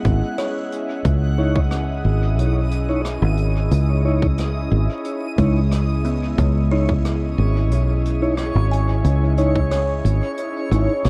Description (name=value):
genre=ambient dub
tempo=90 BPM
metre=4/4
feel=straight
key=C# minor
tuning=A4 = 440 Hz
part: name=airy breathy pad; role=sustained chords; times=0.0-11.1 s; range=C#4 to E5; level=-30 LUFS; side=equal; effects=chorus
part: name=buzzing kalimba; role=arpeggios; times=0.0-11.1 s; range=G#3 to G#5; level=-31 LUFS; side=equal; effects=dub echo
part: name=fingered electric bass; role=bass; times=0.0-11.1 s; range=G#1 to C#2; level=-21 LUFS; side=equal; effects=none
part: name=electronic kick drum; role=drums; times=0.0-9.7 s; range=none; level=-24 LUFS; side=equal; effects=none
part: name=backwards swelling texture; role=texture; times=0.0-11.1 s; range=C#5 to D#6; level=-34 LUFS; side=equal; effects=built-in reverb
part: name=jazz brush drum kit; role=drums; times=0.1-11.1 s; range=hi-hat, rim click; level=-38 LUFS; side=equal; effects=dub echo
part: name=mellow tonewheel organ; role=stabs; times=1.4-10.9 s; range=D#4 to C#5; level=-29 LUFS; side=equal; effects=slow rotary speaker, dub echo
room=light reverb, small room ambience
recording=vinyl crackle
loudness=-20 LUFS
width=mono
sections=0.0-11.1 A section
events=kick drops out 10.4-11.1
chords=0.0 C#madd9